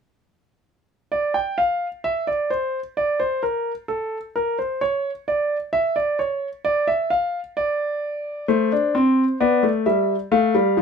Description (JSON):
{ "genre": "classical, baroque-style two-part invention for grand piano", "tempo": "65 BPM", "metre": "4/4", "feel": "straight", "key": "unclear", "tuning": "A4 = 441 Hz", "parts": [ { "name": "warm concert grand piano", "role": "solo", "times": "1.1-10.8 s", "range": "F3 to G5", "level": "-19 LUFS", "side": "equal", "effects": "none" } ], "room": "light reverb", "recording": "minimal, uncompressed stereo recording", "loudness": "-20 LUFS", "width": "side -6 dB against mid", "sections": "1.1-10.8 A section", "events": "none", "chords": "1.1 N.C.; 8.5 Am; 10.3 Fadd9", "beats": "| 1.11 2.04 2.96 3.88 | 4.80 5.73 6.65 7.56 | 8.48 9.40 10.32" }